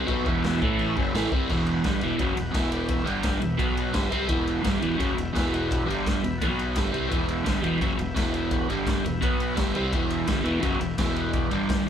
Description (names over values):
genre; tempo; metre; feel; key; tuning
garage rock duo or trio; 171 BPM; 4/4; straight; E minor; A4 = 440 Hz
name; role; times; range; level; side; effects
combo organ; sustained chords; 0.0-11.8 s; E4 to B5; -36 LUFS; left 2 dB; none
crunchy overdriven guitar; riff; 0.0-11.9 s; E2 to C4; -25 LUFS; right 1 dB; phaser
fuzz fingered electric bass; bass; 0.0-11.9 s; E1 to C2; -34 LUFS; equal; overdrive
raw garage drum kit; drums; 0.1-11.8 s; crash cymbal, kick drum, ride cymbal, snare drum; -28 LUFS; left 1 dB; none
room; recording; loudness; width
light reverb; band playing live in one room; -23 LUFS; side -8 dB against mid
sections
0.0-1.5 A section; 1.5-11.9 B section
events
transistor combo organ fill 6.1-7.1, 9.2-9.9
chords
0.1 Em; 0.6 A5; 1.0 Em; 3.1 G5; 3.4 Em; 3.6 B5; 4.0 Em; 5.9 G5; 6.2 Em; 6.4 B5; 6.8 Em; 8.7 G5; 9.1 Em; 9.2 B5; 9.6 Em; 11.5 G5